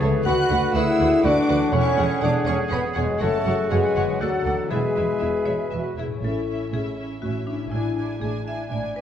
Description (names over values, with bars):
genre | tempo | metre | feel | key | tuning
cinematic, playful, whimsical film cue | 121 BPM | 3/4 | straight | A major | A4 = 442 Hz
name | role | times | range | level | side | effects
marimba with hard mallets | melody | 0.0-9.0 s | D4 to F#5 | -30 LUFS | left 5 dB | none
warm studio violin section | melody | 0.0-9.0 s | C#5 to G#5 | -36 LUFS | left 2 dB | none
bright clarinet | second line | 0.0-6.0 s | E4 to B4 | -32 LUFS | left 1 dB | none
clear oboe | second line | 0.0-5.9 s | F#4 to C#5 | -33 LUFS | right 3 dB | none
silver concert flute | second line | 0.0-5.9 s | E5 to F#5 | -32 LUFS | equal | none
warm studio violin section | second line | 0.0-9.0 s | E4 to F#6 | -36 LUFS | left 1 dB | none
warm bassoon | accompaniment | 0.0-6.0 s | B2 to E3 | -32 LUFS | right 2 dB | none
warm studio viola section | accompaniment | 0.0-9.0 s | C#4 to D5 | -33 LUFS | right 2 dB | none
mellow French horn section | sustained chords | 0.0-5.7 s | F#3 to F#4 | -23 LUFS | left 2 dB | none
concert harp | arpeggios | 0.0-9.0 s | F#2 to E5 | -32 LUFS | left 4 dB | none
warm studio cello section | bass | 0.0-9.0 s | D2 to A2 | -30 LUFS | right 4 dB | none
warm studio double bass section | bass | 0.0-9.0 s | E1 to D2 | -29 LUFS | right 4 dB | none
room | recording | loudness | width
wet recital hall reverb, RT60 1.4 s | worn, warbling old tape, cassette tape, warbly pitch drift | -20 LUFS | side -9 dB against mid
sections
0.0-6.2 A section; 6.2-9.0 B section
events
none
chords
0.2 Bm/D; 1.7 E13; 3.2 F#m; 4.2 D; 4.7 E; 6.2 A; 7.7 E7/A